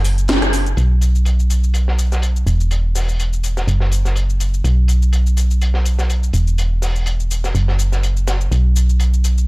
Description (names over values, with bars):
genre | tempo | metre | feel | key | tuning
piano house | 124 BPM | 4/4 | swing 55% on 16ths | unclear | A4 = 440 Hz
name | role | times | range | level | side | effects
solid FM bass | bass | 0.0-9.5 s | E1 to B1 | -15 LUFS | equal | none
crunchy breakbeat drum kit | drums | 0.0-9.4 s | hi-hat, snare drum | -28 LUFS | equal | high-pass filter on hats, low-pass filter on hats, high-pass filter on snare, low-pass filter on snare, high-pass filter on room, low-pass filter on room
house drum kit | drums | 0.0-9.5 s | hi-hat, rim click, shaker, snare drum | -24 LUFS | left 1 dB | none
room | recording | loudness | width
little or no reverb | dark, warm production | -14 LUFS | side -22 dB against mid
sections
0.8-9.5 A section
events
band accent 0.3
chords
none